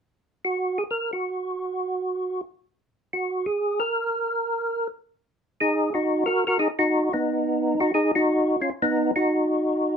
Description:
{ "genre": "jazz", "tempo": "180 BPM", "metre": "4/4", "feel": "swing 62% on 8ths", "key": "Eb minor", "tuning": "A4 = 436 Hz", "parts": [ { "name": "percussive tonewheel organ", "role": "solo", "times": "0.4-10.0 s", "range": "Cb4 to Bb4", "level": "-22 LUFS", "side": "equal", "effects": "chorus vibrato, slow rotary speaker" } ], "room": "light reverb", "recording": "band playing live in one room", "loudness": "-22 LUFS", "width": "side -7 dB against mid", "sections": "0.0-5.2 A section; 5.2-10.0 B section", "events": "none", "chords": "0.0 N.C.; 5.2 Ebm" }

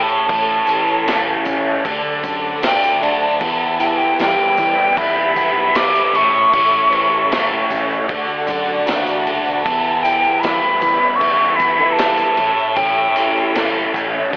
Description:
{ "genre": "psychedelic rock", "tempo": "77 BPM", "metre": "4/4", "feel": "straight", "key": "unclear", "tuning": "A4 = 442 Hz", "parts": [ { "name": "silver concert flute", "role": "melody", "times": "0.0-13.5 s", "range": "G5 to D6", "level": "-16 LUFS", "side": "equal", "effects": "analog delay" }, { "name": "clear studio string section", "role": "sustained chords", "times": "0.0-14.4 s", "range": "E3 to F#5", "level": "-24 LUFS", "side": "equal", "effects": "none" }, { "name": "thick fuzz guitar", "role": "riff", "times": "0.0-14.4 s", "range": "E2 to E4", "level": "-20 LUFS", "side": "equal", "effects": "distortion, phaser" }, { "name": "fingered electric bass", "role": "bass", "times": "0.0-14.4 s", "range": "E1 to E3", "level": "-32 LUFS", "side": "equal", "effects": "none" }, { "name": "tambourine", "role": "percussion", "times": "0.1-14.1 s", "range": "none", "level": "-43 LUFS", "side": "left 1 dB", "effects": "none" }, { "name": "crunchy breakbeat drum kit", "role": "drums", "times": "0.3-14.4 s", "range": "crash cymbal, kick drum, snare drum", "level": "-21 LUFS", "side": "equal", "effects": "none" } ], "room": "light reverb, small room ambience", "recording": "telephone sound", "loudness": "-13 LUFS", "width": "side -23 dB against mid", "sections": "0.0-14.4 A section", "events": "none", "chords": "0.0 A; 1.8 D; 3.4 Em; 6.1 A; 8.1 D; 9.7 Em; 12.4 A" }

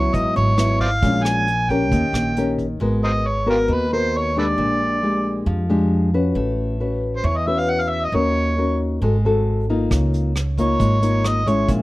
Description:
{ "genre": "bossa nova", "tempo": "135 BPM", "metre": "4/4", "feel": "straight", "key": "G# minor", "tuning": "A4 = 441 Hz", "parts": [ { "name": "overdriven harmonica", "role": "melody", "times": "0.0-11.7 s", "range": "E#4 to G#5", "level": "-22 LUFS", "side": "right 1 dB", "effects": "none" }, { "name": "nylon-string guitar", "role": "accompaniment", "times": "0.0-11.8 s", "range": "G#2 to B4", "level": "-21 LUFS", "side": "left 2 dB", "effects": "none" }, { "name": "upright bass", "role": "bass", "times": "0.0-11.8 s", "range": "G#1 to E#2", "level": "-21 LUFS", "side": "equal", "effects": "none" }, { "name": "vintage brush drum kit", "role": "drums", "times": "0.1-2.7, 9.9-11.8 s", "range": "hi-hat, kick drum, rim click", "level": "-26 LUFS", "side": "right 1 dB", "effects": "none" } ], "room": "little or no reverb", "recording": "close, detailed microphones", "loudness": "-17 LUFS", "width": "side -18 dB against mid", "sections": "0.0-2.8 A section; 2.8-11.8 B section", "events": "harmonica solo 2.8-11.8", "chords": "0.0 C#m7; 1.0 A#m7; 1.9 D#7; 2.8 G#m9; 4.6 A#6; 6.4 A69; 8.1 D#m7; 9.0 G#7b9; 9.9 C#69" }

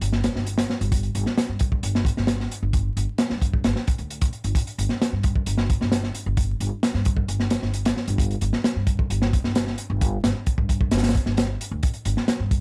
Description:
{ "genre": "breakbeat, breaks", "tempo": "132 BPM", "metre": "4/4", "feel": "straight", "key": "unclear", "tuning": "A4 = 440 Hz", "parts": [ { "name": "upright bass", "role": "bass", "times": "0.0-12.6 s", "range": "G1 to G2", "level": "-28 LUFS", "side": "equal", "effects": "none" }, { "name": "crunchy breakbeat drum kit", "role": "drums", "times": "0.0-12.6 s", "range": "hi-hat, kick drum, snare drum", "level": "-25 LUFS", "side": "equal", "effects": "none" } ], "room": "little or no reverb", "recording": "vinyl crackle", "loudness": "-24 LUFS", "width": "mono", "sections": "0.0-12.6 A section", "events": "none", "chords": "none" }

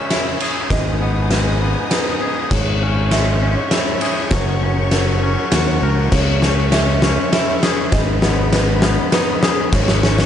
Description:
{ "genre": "post-rock", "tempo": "100 BPM", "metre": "3/4", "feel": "straight", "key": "C# dorian", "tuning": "A4 = 440 Hz", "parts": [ { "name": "dark studio string section", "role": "sustained chords", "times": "0.0-10.3 s", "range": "G#4 to E6", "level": "-26 LUFS", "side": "equal", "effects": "none" }, { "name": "felt-muted upright piano", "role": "arpeggios", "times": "0.0-10.3 s", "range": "A#4 to E5", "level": "-27 LUFS", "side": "right 6 dB", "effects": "analog delay" }, { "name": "twangy electric guitar", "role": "arpeggios", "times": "0.0-10.3 s", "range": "G#2 to A#4", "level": "-23 LUFS", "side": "left 3 dB", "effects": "analog delay" }, { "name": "oversized low-tuned drum kit", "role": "drums", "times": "0.1-10.3 s", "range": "crash cymbal, kick drum, ride cymbal, snare drum", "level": "-18 LUFS", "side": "left 1 dB", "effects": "none" }, { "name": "growling fingered electric bass", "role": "bass", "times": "0.7-10.3 s", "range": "F#1 to D#2", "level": "-18 LUFS", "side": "equal", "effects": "overdrive" } ], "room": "light reverb", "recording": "nothing above 10.3 kHz", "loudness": "-14 LUFS", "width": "side -9 dB against mid", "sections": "0.0-10.3 A section", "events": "build-up 0.0-10.3; drum fill 0.0-10.3", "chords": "0.0 C#m; 0.7 G#m; 2.5 C#m/G#; 4.3 F#; 6.1 C#m; 7.9 G#m; 9.7 C#m/G#" }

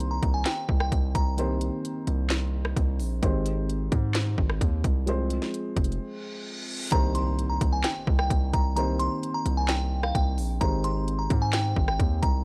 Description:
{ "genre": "hip hop, trap", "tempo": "130 BPM", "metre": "4/4", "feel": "half-time", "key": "C minor", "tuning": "A4 = 441 Hz", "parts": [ { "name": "delicate synth tine bell", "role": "melody", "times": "0.0-1.4, 6.9-12.4 s", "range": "F5 to C6", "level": "-33 LUFS", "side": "equal", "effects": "chorus, low-pass filter, analog delay" }, { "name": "felt-muted upright piano", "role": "accompaniment", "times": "0.0-12.4 s", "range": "Eb3 to C5", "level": "-35 LUFS", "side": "equal", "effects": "low-pass filter" }, { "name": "distorted 808-style bass", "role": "bass", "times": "0.0-12.4 s", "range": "F1 to Ab2", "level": "-29 LUFS", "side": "equal", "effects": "distortion" }, { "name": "trap drum kit", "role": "drums", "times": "0.0-12.3 s", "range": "handclaps, hi-hat, kick drum, rim click, snare drum", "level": "-29 LUFS", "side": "equal", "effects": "none" }, { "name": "reverse cymbal and impact", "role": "sound effects", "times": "6.2-8.8 s", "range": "none", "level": "-40 LUFS", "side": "equal", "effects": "none" } ], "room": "little or no reverb", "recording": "dry, gritty hardware recording, cassette tape", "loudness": "-26 LUFS", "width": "mono", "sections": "0.0-6.9 A section; 6.9-12.4 B section", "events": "break 6.0-6.9; reverse cymbal 6.2-6.9; impact 6.9-8.8", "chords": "0.0 Cm7; 3.2 Abmaj7; 5.1 Fm; 6.9 Cm7; 10.6 Abmaj7" }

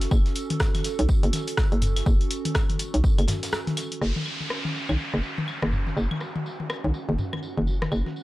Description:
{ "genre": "minimal techno", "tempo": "123 BPM", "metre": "4/4", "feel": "swing 60% on 16ths", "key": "F# minor", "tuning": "A4 = 440 Hz", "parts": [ { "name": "hollow knocking FM bass", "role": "bass", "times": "0.0-8.0 s", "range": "F#1 to B1", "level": "-24 LUFS", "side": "equal", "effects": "sidechain pumping" }, { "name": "modern studio drum kit", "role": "drums", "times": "0.0-8.2 s", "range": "hi-hat, snare drum, tambourine", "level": "-42 LUFS", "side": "equal", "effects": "high-pass filter on hats, low-pass filter on hats, high-pass filter on snare, low-pass filter on snare, high-pass filter on perc, low-pass filter on perc, high-pass filter on room, low-pass filter on room" }, { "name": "punchy analog drum machine", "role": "drums", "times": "0.0-4.0 s", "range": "hi-hat, rim click", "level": "-30 LUFS", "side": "equal", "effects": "low-pass filter on hats, low-pass filter on snare, low-pass filter on room" }, { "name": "warbly tape-like pad", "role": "texture", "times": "0.0-8.2 s", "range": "C#4 to F#5", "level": "-35 LUFS", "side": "right 4 dB", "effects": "chorus, built-in reverb, sidechain pumping" }, { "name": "electronic kick drum", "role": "drums", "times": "0.1-3.2 s", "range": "none", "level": "-22 LUFS", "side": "equal", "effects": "none" }, { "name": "booming analog drum machine", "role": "percussion", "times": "0.1-8.1 s", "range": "claves, rim click, toms", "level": "-30 LUFS", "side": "left 2 dB", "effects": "none" }, { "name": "downlifter", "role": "sound effects", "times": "4.0-7.9 s", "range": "none", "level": "-34 LUFS", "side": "equal", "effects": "none" }, { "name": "swarming drone", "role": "texture", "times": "5.3-8.2 s", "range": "F#4", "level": "-44 LUFS", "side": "right 2 dB", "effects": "built-in reverb, sidechain pumping" } ], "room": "little or no reverb", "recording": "dry, gritty hardware recording, cassette tape", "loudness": "-23 LUFS", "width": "side -17 dB against mid", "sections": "0.0-4.0 A section; 4.0-8.2 B section", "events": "break 3.5-4.0", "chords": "0.0 F#5" }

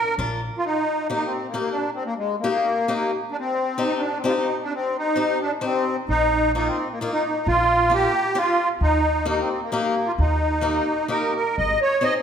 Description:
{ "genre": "alpine folk, alpine dance band", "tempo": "132 BPM", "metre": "3/4", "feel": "straight", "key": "Eb major", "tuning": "A4 = 436 Hz", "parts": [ { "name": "musette accordion", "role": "melody", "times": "0.0-12.1 s", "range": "Ab3 to Eb5", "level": "-21 LUFS", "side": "equal", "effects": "none" }, { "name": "picked swing-style acoustic guitar", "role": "accompaniment", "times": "0.2-12.2 s", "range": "Bb3 to Bb4", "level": "-27 LUFS", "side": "left 3 dB", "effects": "none" }, { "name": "upright bass", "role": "bass", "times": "0.2-0.5, 6.1-11.7 s", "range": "Ab1 to Eb2", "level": "-24 LUFS", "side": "equal", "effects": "none" } ], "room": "wet recital hall reverb, RT60 1.6 s", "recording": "none", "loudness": "-20 LUFS", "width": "side -8 dB against mid", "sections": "0.6-11.6 A section", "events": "none", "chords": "0.0 Bb; 0.6 Eb; 3.4 Cm; 6.1 Bbsus4; 7.5 Bb; 8.8 Eb; 11.6 Ab" }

